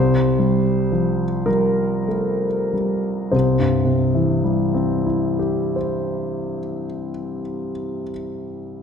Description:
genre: classical, impressionist solo piano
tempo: 29-40 BPM (dotted quarters)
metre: 6/8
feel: rubato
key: C major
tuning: A4 = 439 Hz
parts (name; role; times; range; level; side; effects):
- clear concert grand piano; solo; 0.0-8.8 s; C2 to C5; -18 LUFS; left 1 dB; none
room: wet concert hall reverb, RT60 1.8 s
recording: none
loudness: -18 LUFS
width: side -7 dB against mid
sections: 0.0-3.3 A section; 3.3-6.6 B section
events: slowing down 0.0-3.3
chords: 0.0 C7sus4; 3.3 C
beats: 1.46 | 3.33 4.99

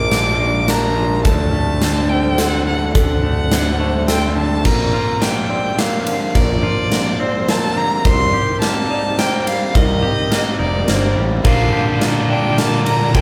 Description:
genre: post-rock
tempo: 106 BPM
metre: 3/4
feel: straight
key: Bb major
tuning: A4 = 440 Hz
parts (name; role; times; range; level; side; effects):
- rich violin; melody; 0.0-13.2 s; C5 to D6; -24 LUFS; equal; none
- soft additive organ-like pad; sustained chords; 0.0-13.2 s; F3 to D5; -30 LUFS; equal; none
- felt-muted upright piano; arpeggios; 0.0-13.2 s; A4 to D5; -27 LUFS; equal; none
- twangy electric guitar; arpeggios; 0.0-13.2 s; Bb2 to G4; -27 LUFS; equal; none
- fuzz fingered electric bass; bass; 0.0-13.2 s; F1 to D2; -22 LUFS; equal; overdrive
- huge arena drum kit; drums; 0.1-13.2 s; crash cymbal, hi-hat, kick drum, ride cymbal, snare drum; -21 LUFS; equal; none
- distorted electric guitar; riff; 11.4-13.2 s; Bb2 to D4; -19 LUFS; equal; overdrive
room: moderate large studio reverb, RT60 0.9 s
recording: band playing live in one room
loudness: -17 LUFS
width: mono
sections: 0.0-4.7 A section; 4.7-13.2 B section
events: none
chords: 0.0 Gm7/Bb; 1.3 D7; 4.7 Bbadd9; 8.1 Cm7; 11.4 Gm7/Bb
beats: 0.12 0.69 | 1.25 1.82 2.39 | 2.95 3.52 4.09 | 4.65 5.22 5.79 | 6.35 6.92 7.49 | 8.05 8.62 9.19 | 9.75 10.32 10.88 | 11.45 12.02 12.58 | 13.15

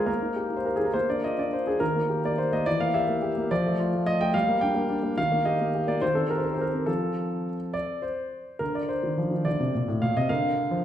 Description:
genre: classical-period piano sonatina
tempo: 70 BPM (dotted quarters)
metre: 6/8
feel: straight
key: Bb major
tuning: A4 = 440 Hz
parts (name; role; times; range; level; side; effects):
- warm concert grand piano; solo; 0.0-10.8 s; A2 to G5; -24 LUFS; equal; none
room: wet recital hall reverb, RT60 1.4 s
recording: heard from further back in the room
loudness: -24 LUFS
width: side -10 dB against mid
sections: 0.0-8.6 A section; 8.6-10.8 B section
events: none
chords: 0.1 Eb/Bb; 0.9 Bb; 1.8 Eb; 2.7 Em7b5; 3.5 F; 4.3 Gm; 5.2 Eb; 6.0 Cm/Eb; 6.9 F; 8.6 Bb/D; 10.3 Bb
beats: | 0.09 0.95 | 1.81 2.66 | 3.51 4.34 | 5.18 6.02 | 6.88 7.75 | 8.61 9.46 | 10.30

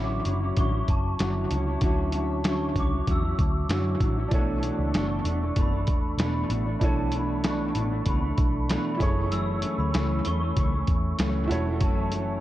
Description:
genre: indie pop, bedroom pop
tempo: 96 BPM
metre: 4/4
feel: straight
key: unclear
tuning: A4 = 440 Hz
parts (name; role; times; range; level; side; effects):
- glockenspiel with rubber mallets; melody; 0.0-12.4 s; A5 to E6; -34 LUFS; equal; ensemble chorus, dub echo
- mellow electric guitar; accompaniment; 0.0-12.4 s; F#2 to E4; -29 LUFS; equal; lush chorus, vibrato effect, dub echo
- vintage muted picked electric bass; bass; 0.0-12.4 s; E1 to F#2; -28 LUFS; equal; none
- lo-fi sampler-style drum kit; drums; 0.3-12.3 s; hi-hat, kick drum, snare drum; -27 LUFS; equal; vintage 12-bit sampler grit
- bright upright piano; accompaniment; 4.3-12.4 s; D4 to C#5; -35 LUFS; right 4 dB; cassette tape, dub echo
room: digital ambience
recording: echo-heavy mix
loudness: -23 LUFS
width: side -14 dB against mid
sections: 0.0-12.4 A section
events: none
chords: 0.0 Dmaj9; 4.3 Bm11; 9.0 F#m7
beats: 0.57 1.19 | 1.82 2.44 3.07 3.69 | 4.32 4.94 5.57 6.19 | 6.82 7.44 8.07 8.69 | 9.32 9.94 10.57 11.19 | 11.82

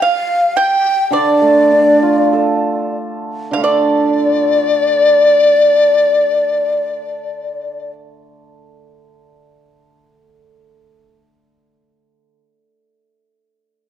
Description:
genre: chinese traditional, Chinese chamber ensemble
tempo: 45-56 BPM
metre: 4/4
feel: rubato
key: D yu mode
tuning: A4 = 440 Hz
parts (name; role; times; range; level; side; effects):
- breathy mellow xiao; melody; 0.0-7.9 s; D5 to G5; -16 LUFS; equal; none
- mellow large dizi; second line; 0.0-7.9 s; D5 to G5; -15 LUFS; left 3 dB; none
- pipa; second line; 0.0-7.9 s; D5 to G5; -19 LUFS; right 6 dB; none
- hammered dulcimer; accompaniment; 1.1-12.4 s; D3 to A4; -17 LUFS; right 3 dB; none
room: light reverb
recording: dark, warm production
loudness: -11 LUFS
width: side -10 dB against mid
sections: 0.0-3.6 A section; 3.6-8.9 B section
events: slowing down 0.0-3.6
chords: none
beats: 0.01 1.13 2.34 | 3.64 4.97 6.27 7.58

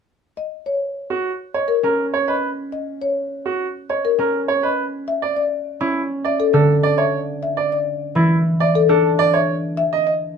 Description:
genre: classical, minimalist pattern music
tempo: 102 BPM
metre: 4/4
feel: straight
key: unclear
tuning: A4 = 440 Hz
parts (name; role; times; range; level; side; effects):
- marimba with medium mallets; melody; 0.4-10.3 s; A4 to E5; -21 LUFS; left 9 dB; none
- bright grand piano; arpeggios; 1.1-10.1 s; E4 to D#5; -20 LUFS; right 6 dB; none
- concert harp; accompaniment; 1.8-9.8 s; D3 to D4; -22 LUFS; right 1 dB; none
room: light reverb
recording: minimal, uncompressed stereo recording, lossy compression artefacts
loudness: -17 LUFS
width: side -6 dB against mid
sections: 0.4-10.4 A section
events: none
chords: 0.4 N.C.; 5.1 Dsus2; 9.8 N.C.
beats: | 0.37 0.96 1.54 2.13 | 2.72 3.31 3.90 4.49 | 5.08 5.66 6.25 6.84 | 7.43 8.02 8.60 9.19 | 9.78

